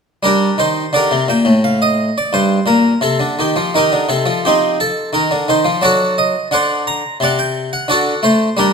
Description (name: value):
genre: classical, baroque-style suite movement for harpsichord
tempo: 86 BPM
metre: 4/4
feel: rubato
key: G minor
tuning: A4 = 440 Hz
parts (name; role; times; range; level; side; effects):
- harpsichord; solo; 0.2-8.7 s; G2 to Bb5; -12 LUFS; equal; none
room: moderate recital hall reverb, RT60 1.8 s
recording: close, detailed microphones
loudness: -13 LUFS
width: side -5 dB against mid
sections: 0.2-8.7 A section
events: none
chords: 0.2 Gm; 3.0 Cm; 5.8 D7